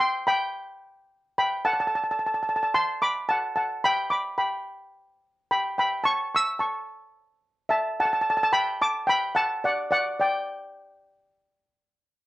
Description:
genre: calypso.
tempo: 109 BPM.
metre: 4/4.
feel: straight.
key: G major.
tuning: A4 = 439 Hz.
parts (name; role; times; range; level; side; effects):
steel pan; solo; 0.0-12.1 s; D5 to E6; -23 LUFS; equal; none.
room: moderate studio reverb, RT60 0.7 s.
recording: dark, warm production.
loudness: -23 LUFS.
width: side -16 dB against mid.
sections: 0.0-12.3 A section.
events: none.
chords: 0.0 Gadd11; 1.6 F#dim; 3.8 G; 6.0 A; 8.2 D; 10.5 N.C..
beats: 0.53 1.08 | 1.63 2.18 2.73 3.29 | 3.84 4.39 4.94 5.49 | 6.04 6.59 7.14 7.70 | 8.25 8.80 9.35 9.90 | 10.45 11.01 11.56.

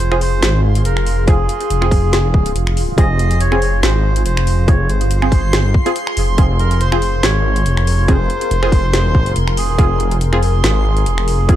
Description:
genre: deep dubstep.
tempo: 141 BPM.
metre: 4/4.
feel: swing 54% on 16ths, half-time.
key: F minor.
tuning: A4 = 440 Hz.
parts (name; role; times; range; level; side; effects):
melodica; melody; 0.0-11.6 s; Ab4 to Eb5; -23 LUFS; right 2 dB; dub echo.
deep dark ambient pad; sustained chords; 0.0-11.6 s; F4 to Bb4; -24 LUFS; left 2 dB; chorus, built-in reverb.
dark detuned saw bass; bass; 0.0-11.6 s; F1 to Ab1; -15 LUFS; equal; none.
garage drum kit; drums; 0.0-11.6 s; finger snaps, hi-hat, snare drum; -22 LUFS; equal; none.
backwards swelling texture; texture; 0.7-11.6 s; C6; -29 LUFS; right 2 dB; built-in reverb.
filtered dub chord stab; stabs; 0.1-11.6 s; C4 to Ab4; -23 LUFS; right 2 dB; chorus, dub echo.
electronic kick drum; drums; 1.3-11.6 s; none; -12 LUFS; equal; none.
room: little or no reverb.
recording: dark, warm production.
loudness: -12 LUFS.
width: side -12 dB against mid.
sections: 0.0-11.6 A section.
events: none.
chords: 0.0 Fm.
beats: 0.00 0.42 0.85 | 1.28 1.70 2.13 2.55 | 2.98 3.40 3.83 4.25 | 4.68 5.11 5.53 5.96 | 6.38 6.81 7.23 7.66 | 8.08 8.51 8.94 9.36 | 9.79 10.21 10.64 11.06 | 11.49.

